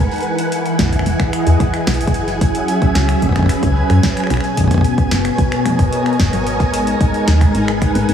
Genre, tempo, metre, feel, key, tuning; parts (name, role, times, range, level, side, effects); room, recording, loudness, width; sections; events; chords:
IDM; 111 BPM; 4/4; straight; B major; A4 = 441 Hz
soft string machine; sustained chords; 0.0-8.1 s; B2 to F#5; -18 LUFS; equal; ensemble chorus
woody FM bass; bass; 0.0-8.1 s; E1 to F#2; -17 LUFS; equal
flickering grainy texture; texture; 0.0-8.1 s; G#5; -24 LUFS; right 2 dB; built-in reverb
booming analog drum machine; drums; 0.1-8.1 s; finger snaps, hi-hat, snare drum, toms; -24 LUFS; left 1 dB; digital delay
electronic kick drum; drums; 0.8-7.9 s; -16 LUFS; equal
light reverb; heavily compressed radio sound, studio ambience; -13 LUFS; side -8 dB against mid
0.0-8.1 A section
0.0 Emaj9; 2.1 F#9sus4; 4.3 Bmaj7; 6.5 G#m7